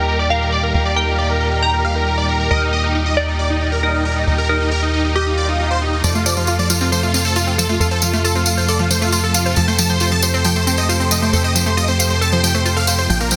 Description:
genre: uplifting trance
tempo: 136 BPM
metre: 4/4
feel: straight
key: unclear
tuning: A4 = 439 Hz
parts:
  - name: big supersaw lead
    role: melody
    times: 0.0-13.4 s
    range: Eb4 to A5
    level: -23 LUFS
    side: equal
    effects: phaser, low-pass filter
  - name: glassy wavetable pluck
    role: second line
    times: 0.0-5.9 s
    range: G4 to Bb5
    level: -25 LUFS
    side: equal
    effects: chorus, digital delay
  - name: clear chamber string section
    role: sustained chords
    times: 0.0-13.4 s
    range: Bb2 to A4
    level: -25 LUFS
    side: equal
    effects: low-pass filter
  - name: tight sequencer bass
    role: bass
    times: 0.0-13.4 s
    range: Bb1 to F2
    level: -22 LUFS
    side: equal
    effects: none
  - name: swell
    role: sound effects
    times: 5.3-6.0 s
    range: none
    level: -31 LUFS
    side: equal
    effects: none
  - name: analog pluck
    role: arpeggios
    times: 6.0-13.4 s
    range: F3 to F5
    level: -24 LUFS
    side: equal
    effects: chorus, delay
  - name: tambourine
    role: percussion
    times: 6.0-13.4 s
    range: none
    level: -22 LUFS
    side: equal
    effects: none
room: moderate huge ambient reverb, RT60 7.4 s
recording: dense, heavily limited modern master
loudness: -17 LUFS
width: mono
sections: 0.0-13.4 A section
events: swell 5.3-6.0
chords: 0.0 Eb; 6.0 F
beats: 0.30 | 0.74 1.18 1.63 2.07 | 2.51 2.95 3.39 3.83 | 4.27 4.71 5.16 5.60 | 6.04 6.48 6.92 7.36 | 7.80 8.24 8.68 9.13 | 9.57 10.01 10.45 10.89 | 11.33 11.77 12.21 12.65 | 13.10

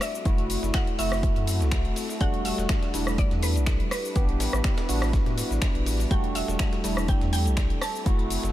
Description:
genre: deep house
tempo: 123 BPM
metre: 4/4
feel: swing 54% on 16ths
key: E minor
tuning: A4 = 436 Hz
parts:
  - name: mallet-like synth pluck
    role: melody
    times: 0.0-8.5 s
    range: B4 to A5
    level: -35 LUFS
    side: right 2 dB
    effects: lush chorus, diffuse ambient delay
  - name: warm analog pad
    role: sustained chords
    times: 0.0-8.5 s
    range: G3 to B4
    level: -37 LUFS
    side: left 1 dB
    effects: lush chorus, sidechain pumping
  - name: deep house drum kit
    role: drums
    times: 0.0-8.5 s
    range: finger snaps, hi-hat, rim click, shaker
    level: -32 LUFS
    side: left 1 dB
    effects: none
  - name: dusty soul sampler-style drum kit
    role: drums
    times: 0.0-8.5 s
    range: hi-hat, snare drum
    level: -42 LUFS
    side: equal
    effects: none
  - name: bright tine electric piano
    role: stabs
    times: 0.3-8.5 s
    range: G3 to G4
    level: -31 LUFS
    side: equal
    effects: analog chorus, sidechain pumping, diffuse ambient delay
  - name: warm sub bass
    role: bass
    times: 0.3-8.5 s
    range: D1 to A2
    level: -28 LUFS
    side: equal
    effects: sidechain pumping
  - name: electronic kick drum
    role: drums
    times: 0.3-8.2 s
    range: none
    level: -26 LUFS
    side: equal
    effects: none
room: light reverb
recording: none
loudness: -23 LUFS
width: side -14 dB against mid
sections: 0.0-8.5 A section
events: none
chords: 0.0 F#m7b5; 2.2 Em11; 3.9 A9sus4; 6.1 Em11; 7.8 F#m7b5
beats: | 0.26 0.74 1.23 1.72 | 2.21 2.69 3.18 3.67 | 4.16 4.65 5.13 5.62 | 6.11 6.60 7.08 7.57 | 8.06

